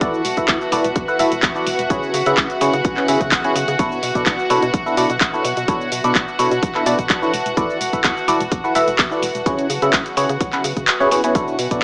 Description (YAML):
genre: piano house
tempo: 127 BPM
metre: 4/4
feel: straight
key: unclear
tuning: A4 = 440 Hz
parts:
  - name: clear studio string section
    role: sustained chords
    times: 0.0-11.8 s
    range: F#4 to F#5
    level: -24 LUFS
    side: equal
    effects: sidechain pumping
  - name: barking FM electric piano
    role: riff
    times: 0.0-11.8 s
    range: B2 to F#5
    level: -19 LUFS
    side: equal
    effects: phaser, vintage 12-bit sampler grit, sidechain pumping, tape echo
  - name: organ-like FM bass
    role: bass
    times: 0.0-11.8 s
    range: E1 to C#3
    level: -26 LUFS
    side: equal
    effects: sidechain pumping
  - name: electronic kick drum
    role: drums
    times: 0.0-11.8 s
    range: none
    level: -22 LUFS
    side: equal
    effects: none
  - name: house drum kit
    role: drums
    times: 0.0-11.8 s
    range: handclaps, hi-hat, shaker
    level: -20 LUFS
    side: equal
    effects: none
  - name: granular cloud pad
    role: texture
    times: 0.0-11.8 s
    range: F#4 to A5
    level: -26 LUFS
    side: equal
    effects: built-in reverb, sidechain pumping
room: moderate plate reverb, RT60 1.3 s, digital ambience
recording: small speaker sound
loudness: -15 LUFS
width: side -33 dB against mid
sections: 0.0-11.8 A section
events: none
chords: 0.0 E9sus4; 1.9 C#m7; 3.8 Bm11; 7.3 E9sus4; 9.5 C#m7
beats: | 0.01 0.48 0.96 1.43 | 1.90 2.37 2.85 3.32 | 3.79 4.26 4.74 5.21 | 5.68 6.15 6.63 7.10 | 7.57 8.04 8.52 8.99 | 9.46 9.93 10.41 10.88 | 11.35 11.82